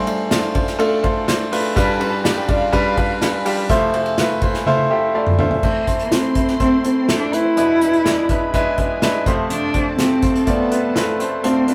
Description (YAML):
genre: piano-driven pop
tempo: 124 BPM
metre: 4/4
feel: straight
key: A minor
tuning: A4 = 440 Hz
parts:
  - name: dark cello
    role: melody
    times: 0.0-0.3, 5.6-11.7 s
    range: G3 to E4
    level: -21 LUFS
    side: equal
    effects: none
  - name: bright concert grand piano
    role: accompaniment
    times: 0.0-11.7 s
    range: D2 to A5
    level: -21 LUFS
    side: equal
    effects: none
  - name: unplugged drum kit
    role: drums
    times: 0.1-11.7 s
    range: crash cymbal, hi-hat, kick drum, ride cymbal, snare drum, toms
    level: -24 LUFS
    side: equal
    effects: none
  - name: dark studio violin section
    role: second line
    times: 2.0-11.7 s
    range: F4 to C6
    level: -34 LUFS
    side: equal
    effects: none
room: moderate studio ambience, RT60 0.5 s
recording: rough rehearsal-room recording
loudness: -18 LUFS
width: mono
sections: 0.0-5.6 A section; 5.6-11.7 B section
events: drum fill 4.7-5.6; grand piano fill 4.7-5.6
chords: 0.0 Dm7/A; 1.8 G7; 3.7 Fmaj7; 5.6 Am; 7.6 E7; 9.3 F